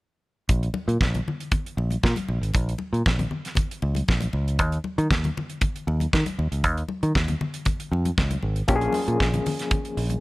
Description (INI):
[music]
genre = disco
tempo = 117 BPM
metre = 4/4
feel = straight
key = unclear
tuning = A4 = 440 Hz
[part]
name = fingered electric bass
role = bass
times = 0.5-10.1 s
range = Ab1 to Eb3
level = -24 LUFS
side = equal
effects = none
[part]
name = damped 70s drum kit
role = drums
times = 0.5-10.2 s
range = hi-hat, kick drum, snare drum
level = -24 LUFS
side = equal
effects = none
[part]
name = congas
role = percussion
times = 0.7-10.2 s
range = none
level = -33 LUFS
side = left 3 dB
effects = none
[part]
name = overdriven reed electric piano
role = accompaniment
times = 8.7-10.2 s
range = F3 to Ab4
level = -25 LUFS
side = left 2 dB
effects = tremolo
[sound]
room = light reverb, small room ambience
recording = none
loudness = -22 LUFS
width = side -21 dB against mid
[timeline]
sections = 0.5-10.2 A section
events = none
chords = 0.5 Bbm; 4.6 N.C.; 8.7 Bbm7